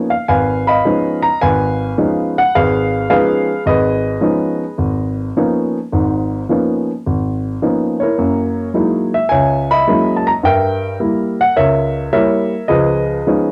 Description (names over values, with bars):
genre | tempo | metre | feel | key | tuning
solo jazz | 106 BPM | 4/4 | swing 69% on 8ths | Db mixolydian | A4 = 440 Hz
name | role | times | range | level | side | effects
warm baby grand piano | solo | 0.0-13.5 s | Ab1 to Cb6 | -16 LUFS | equal | cassette tape
room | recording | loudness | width
moderate small room reverb, RT60 0.5 s | home recording on cassette | -16 LUFS | mono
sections
0.0-13.5 A section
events
none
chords
0.0 Db13; 8.2 Gb13; 10.4 Gdim7; 12.7 Db9